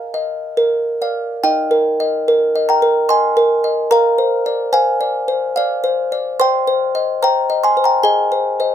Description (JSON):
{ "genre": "classical, lullaby for music box", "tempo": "72 BPM", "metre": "3/4", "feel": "straight", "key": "Eb major", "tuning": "A4 = 440 Hz", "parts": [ { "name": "music box", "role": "solo", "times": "0.0-8.7 s", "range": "Eb4 to C6", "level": "-14 LUFS", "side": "equal", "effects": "none" } ], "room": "light reverb", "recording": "none", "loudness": "-14 LUFS", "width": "side -9 dB against mid", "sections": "0.0-1.4 A section; 1.4-8.7 B section", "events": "none", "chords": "0.0 Bbsus4; 0.6 Bb; 1.4 Eb; 3.9 Bb9; 6.4 Cm; 8.0 Ab" }